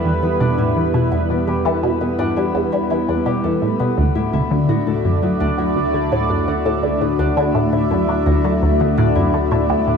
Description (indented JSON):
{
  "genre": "ambient, sequencer-driven space music",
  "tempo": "84 BPM",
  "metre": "4/4",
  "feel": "straight",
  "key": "unclear",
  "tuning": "A4 = 442 Hz",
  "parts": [
    { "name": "sweeping resonant pad", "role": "sustained chords", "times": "0.0-10.0 s", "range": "G3 to D5", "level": "-20 LUFS", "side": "equal", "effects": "chorus, shimmer reverb" },
    { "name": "concert harp", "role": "arpeggios", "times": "0.0-10.0 s", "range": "B3 to A4", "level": "-25 LUFS", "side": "moving between left 7 dB and right 1 dB", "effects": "auto-pan, ping-pong delay, shimmer reverb" },
    { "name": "fat analog bass", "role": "bass", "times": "0.0-10.0 s", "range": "D2 to E2", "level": "-27 LUFS", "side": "equal", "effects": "tube saturation" },
    { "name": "resonant blip pluck", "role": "riff", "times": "0.1-10.0 s", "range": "D2 to G3", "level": "-19 LUFS", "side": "equal", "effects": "phaser, analog chorus, ping-pong delay" },
    { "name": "bubbling stepped-filter texture", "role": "texture", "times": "4.3-10.0 s", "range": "E5", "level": "-26 LUFS", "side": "equal", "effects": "chorus, built-in reverb, shimmer reverb" }
  ],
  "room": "wet scoring stage reverb, RT60 2.1 s",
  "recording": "none",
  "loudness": "-15 LUFS",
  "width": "side -6 dB against mid",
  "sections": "0.0-4.0 A section; 4.0-10.0 B section",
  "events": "none",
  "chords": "0.0 Em; 4.0 D"
}